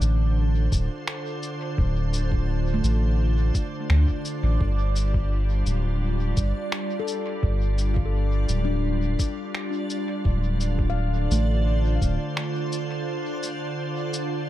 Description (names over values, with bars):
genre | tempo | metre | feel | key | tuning
ambient dub | 85 BPM | 4/4 | straight | unclear | A4 = 441 Hz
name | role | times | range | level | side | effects
soft additive organ-like pad | sustained chords | 0.0-14.5 s | D3 to C5 | -30 LUFS | right 1 dB | ensemble chorus, built-in reverb
handpan | arpeggios | 0.0-14.5 s | A3 to F5 | -34 LUFS | left 3 dB | analog delay
soft dub sub bass | bass | 0.0-12.2 s | D1 to D2 | -22 LUFS | equal | tube saturation
electronic cabasa and finger snaps | drums | 0.0-14.3 s | none | -33 LUFS | left 1 dB | dub echo
backwards swelling texture | texture | 0.0-14.5 s | D5 | -38 LUFS | right 4 dB | built-in reverb
electronic kick drum | drums | 0.7-12.2 s | none | -25 LUFS | equal | none
room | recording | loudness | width
digital ambience | echo-heavy mix | -22 LUFS | side -14 dB against mid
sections
0.0-14.5 A section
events
break 13.1-14.5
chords
0.0 Dm7; 4.6 G5; 10.3 Dm7